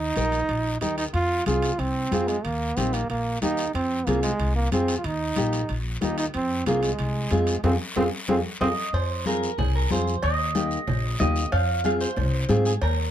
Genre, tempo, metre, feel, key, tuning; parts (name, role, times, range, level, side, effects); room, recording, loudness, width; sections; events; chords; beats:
latin, cumbia; 185 BPM; 4/4; straight; F minor; A4 = 440 Hz
bright trombone; second line; 0.0-8.7 s; Ab3 to F4; -27 LUFS; right 2 dB
upright bass; bass; 0.0-13.1 s; Bb1 to Ab2; -27 LUFS; equal
nylon-string guitar; accompaniment; 0.2-12.7 s; Bb3 to Bb4; -26 LUFS; left 1 dB
congas; percussion; 0.2-13.0 s; -32 LUFS; left 4 dB
guiro; percussion; 0.2-13.1 s; -37 LUFS; left 3 dB
timbales and cowbell; percussion; 0.2-13.0 s; -36 LUFS; right 2 dB
clean electric guitar; melody; 8.6-13.1 s; Ab4 to F5; -28 LUFS; right 2 dB; spring reverb
light reverb; -22 LUFS; side -11 dB against mid
0.0-8.9 A section; 8.9-13.1 B section
trombone solo 0.0-8.9; band accent 7.6-8.9; drum fill 8.0-8.9
0.0 Eb; 1.1 Fm; 2.4 Eb; 3.7 Fm; 5.0 Eb; 6.3 Fm; 10.2 Eb; 11.5 Fm
0.16 0.49 0.81 | 1.14 1.47 1.79 2.12 | 2.44 2.77 3.09 3.42 | 3.74 4.07 4.39 4.72 | 5.04 5.37 5.69 6.02 | 6.34 6.67 6.99 7.32 | 7.64 7.96 8.29 8.61 | 8.94 9.26 9.58 9.91 | 10.23 10.55 10.88 11.20 | 11.52 11.85 12.17 12.49 | 12.81